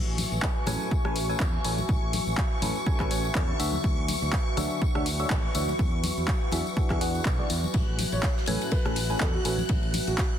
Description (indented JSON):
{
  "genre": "piano house",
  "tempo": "123 BPM",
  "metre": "4/4",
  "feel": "swing 56% on 16ths",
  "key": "A major",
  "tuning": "A4 = 443 Hz",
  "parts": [
    { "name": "string machine, violins", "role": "sustained chords", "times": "0.0-10.4 s", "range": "C#6 to F#6", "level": "-37 LUFS", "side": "equal", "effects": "ensemble chorus, sidechain pumping" },
    { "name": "fingered electric bass", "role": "bass", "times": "0.0-10.1 s", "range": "A1 to E2", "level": "-31 LUFS", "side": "equal", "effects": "sidechain pumping" },
    { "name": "deep dark ambient pad", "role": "texture", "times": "0.0-10.4 s", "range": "F#4 to G#5", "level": "-34 LUFS", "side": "equal", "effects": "chorus, built-in reverb, sidechain pumping" },
    { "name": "punchy analog drum machine", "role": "drums", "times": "0.2-10.3 s", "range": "handclaps, hi-hat, rim click", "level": "-33 LUFS", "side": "equal", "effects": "none" },
    { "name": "congas and tambourine", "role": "percussion", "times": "0.2-10.3 s", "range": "none", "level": "-36 LUFS", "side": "left 5 dB", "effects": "none" },
    { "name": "electronic kick drum", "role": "drums", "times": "0.4-10.3 s", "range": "none", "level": "-27 LUFS", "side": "equal", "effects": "none" },
    { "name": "barking FM electric piano", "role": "riff", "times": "0.7-9.6 s", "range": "A2 to A5", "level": "-34 LUFS", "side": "equal", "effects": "phaser, sidechain pumping, digital delay" },
    { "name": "loose indie drum kit", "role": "drums", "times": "7.7-10.3 s", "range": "ride cymbal, snare drum", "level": "-40 LUFS", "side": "left 4 dB", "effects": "sidechain pumping on cymbals, high-pass filter on cymbals, high-pass filter on snare, high-pass filter on room" },
    { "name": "dark grand piano", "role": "melody", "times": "8.1-10.2 s", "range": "F#4 to C#5", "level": "-35 LUFS", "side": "equal", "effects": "digital delay" }
  ],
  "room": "light reverb, small room ambience",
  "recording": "dense, heavily limited modern master",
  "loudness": "-24 LUFS",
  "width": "side -10 dB against mid",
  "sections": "0.0-10.4 A section",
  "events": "none",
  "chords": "0.0 Amaj9; 5.8 E9; 7.7 Amaj9"
}